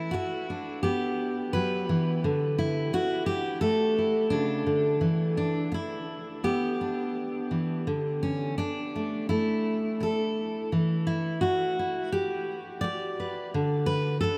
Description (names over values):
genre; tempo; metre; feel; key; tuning
folk, solo fingerstyle acoustic guitar; 85 BPM; 4/4; rubato; unclear; A4 = 439 Hz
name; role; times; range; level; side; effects
fingerpicked steel-string acoustic guitar; solo; 0.0-14.4 s; C#3 to D5; -28 LUFS; equal; none
room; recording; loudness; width
wet huge ambient reverb, RT60 8.1 s; in a vast, echoing space; -28 LUFS; mono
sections
0.0-14.4 A section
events
none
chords
0.0 Em7; 2.2 Dsus2; 5.0 Em7; 7.9 Dsus2; 10.7 Em7; 13.5 D5